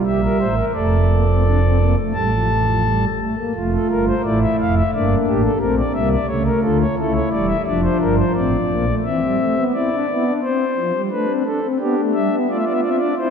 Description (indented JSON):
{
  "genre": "classical, baroque-style 4-part fugue for pipe organ",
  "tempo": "87 BPM",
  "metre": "4/4",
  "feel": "straight",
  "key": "D minor, C major from 9.0 s",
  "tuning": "A4 = 440 Hz",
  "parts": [
    { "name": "pipe organ, principal", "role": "solo", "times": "0.0-13.3 s", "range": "E1 to A5", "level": "-16 LUFS", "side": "equal", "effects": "none" }
  ],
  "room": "wet church reverb, RT60 2.8 s",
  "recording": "dark, warm production",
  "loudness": "-16 LUFS",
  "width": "side -7 dB against mid",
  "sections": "0.0-3.6 A section; 3.6-9.0 B section; 9.0-13.3 C section",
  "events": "none",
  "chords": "0.0 Edim; 0.7 Dm/F; 2.1 A5; 3.6 Dm/F (rootless); 4.9 Em7b5/G (rootless); 6.3 A7/C#; 7.7 Dm/F; 9.0 C/E; 10.4 D7(no3); 11.8 G7"
}